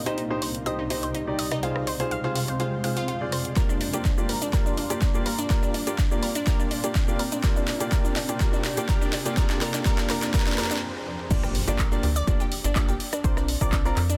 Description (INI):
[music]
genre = progressive house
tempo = 124 BPM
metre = 4/4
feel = straight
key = F dorian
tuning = A4 = 438 Hz
[part]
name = shimmering ambient pad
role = sustained chords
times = 0.0-11.3 s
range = C2 to G5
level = -35 LUFS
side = equal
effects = chorus, built-in reverb, sidechain pumping
[part]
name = analog pluck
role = arpeggios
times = 0.1-14.1 s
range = D4 to F5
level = -34 LUFS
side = equal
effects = chorus, sidechain pumping, dub echo
[part]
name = clear baby grand piano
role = stabs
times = 0.1-14.0 s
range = Bb3 to D5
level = -33 LUFS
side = equal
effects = sidechain pumping, low-pass filter, dub echo
[part]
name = pop drum kit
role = drums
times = 0.1-14.2 s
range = cabasa, crash cymbal, handclaps, hi-hat, rim click, snare drum, toms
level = -34 LUFS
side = equal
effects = high-pass filter on hats, soft clipping on snare, high-pass filter on snare, high-pass filter on perc, high-pass filter on toms, high-pass filter on cymbals
[part]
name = electronic kick drum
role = drums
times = 3.6-13.8 s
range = none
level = -26 LUFS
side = equal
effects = none
[part]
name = riser and impact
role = sound effects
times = 7.1-13.2 s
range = none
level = -42 LUFS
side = equal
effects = none
[part]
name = tight sequencer bass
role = bass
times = 11.3-14.2 s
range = G1 to F2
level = -29 LUFS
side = equal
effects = sidechain pumping
[sound]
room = light reverb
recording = dense, heavily limited modern master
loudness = -25 LUFS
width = mono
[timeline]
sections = 0.0-11.3 A section; 11.3-14.2 B section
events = build-up 0.0-11.3; filter sweep on ambient pad 0.0-11.3; drum fill 3.6-10.8, 11.1; break 10.8-11.3; drop 11.3-14.2; impact 11.3-13.2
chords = 0.0 Cm; 1.6 Fm; 3.6 Gm7; 5.5 Bbadd9; 7.4 Cm; 9.4 Fm; 11.3 Gm7; 13.2 Bbadd9